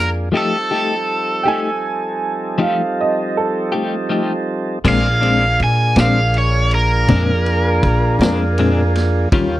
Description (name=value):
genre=slow blues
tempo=54 BPM (dotted quarters)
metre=12/8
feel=straight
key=unclear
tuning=A4 = 440 Hz
part: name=cranked stack guitar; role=melody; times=0.0-8.9 s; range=A4 to Ab5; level=-19 LUFS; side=equal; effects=overdrive, slapback echo
part: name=tonewheel organ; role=sustained chords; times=0.0-9.6 s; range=F3 to A4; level=-22 LUFS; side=right 1 dB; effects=slow rotary speaker
part: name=upright bass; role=bass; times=0.0-9.6 s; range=Bb1 to Bb2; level=-17 LUFS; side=equal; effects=none
part: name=clean electric guitar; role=accompaniment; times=0.3-9.6 s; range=Bb2 to G4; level=-18 LUFS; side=left 4 dB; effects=harmonic tremolo
part: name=clear upright piano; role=second line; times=1.4-3.7 s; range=A4 to Ab5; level=-20 LUFS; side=right 5 dB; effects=none
part: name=vintage drum kit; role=drums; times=4.8-9.5 s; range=crash cymbal, kick drum, ride cymbal, snare drum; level=-21 LUFS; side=equal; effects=none
room=small room reverb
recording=dry, close 1970s-style studio recording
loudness=-14 LUFS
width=side -15 dB against mid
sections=0.0-4.8 A section; 4.8-9.6 B section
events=overdriven electric guitar solo 4.8-9.6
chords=0.3 F9; 4.8 Bb9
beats=| 0.34 1.46 2.59 3.71 | 4.83 5.96 7.08 8.20 | 9.32